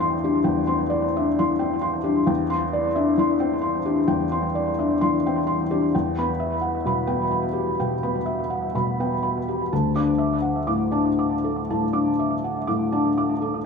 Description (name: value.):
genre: neoclassical minimalist piano.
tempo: 60-66 BPM.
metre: 4/4.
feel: rubato.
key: unclear.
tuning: A4 = 438 Hz.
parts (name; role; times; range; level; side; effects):
felt-muted upright piano; solo; 0.0-13.7 s; D2 to D6; -20 LUFS; left 1 dB; tape echo.
room: moderate echo chamber reverb, RT60 1.6 s, studio reverb.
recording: echo-heavy mix.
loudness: -20 LUFS.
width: side -5 dB against mid.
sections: 0.0-13.7 A section.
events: none.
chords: 0.0 Cadd9/E; 5.9 Em; 9.7 Dsus2.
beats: 0.47 1.38 | 2.29 3.20 4.11 5.03 | 5.94 6.86 7.79 8.74 | 9.71 10.70 11.69 12.68.